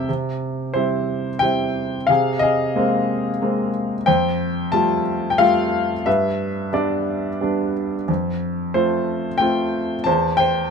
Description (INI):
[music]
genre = classical, lyrical solo piano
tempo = 90 BPM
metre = 3/4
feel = rubato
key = C major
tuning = A4 = 440 Hz
[part]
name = clear baby grand piano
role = solo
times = 0.0-10.7 s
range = E2 to A5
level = -18 LUFS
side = left 1 dB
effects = none
[sound]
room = light reverb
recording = close, detailed microphones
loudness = -18 LUFS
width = side -6 dB against mid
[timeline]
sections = 0.1-10.7 A section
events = none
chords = 0.1 C; 2.1 Abadd9/C; 4.1 Fadd9; 6.1 G; 8.1 F; 10.1 C/E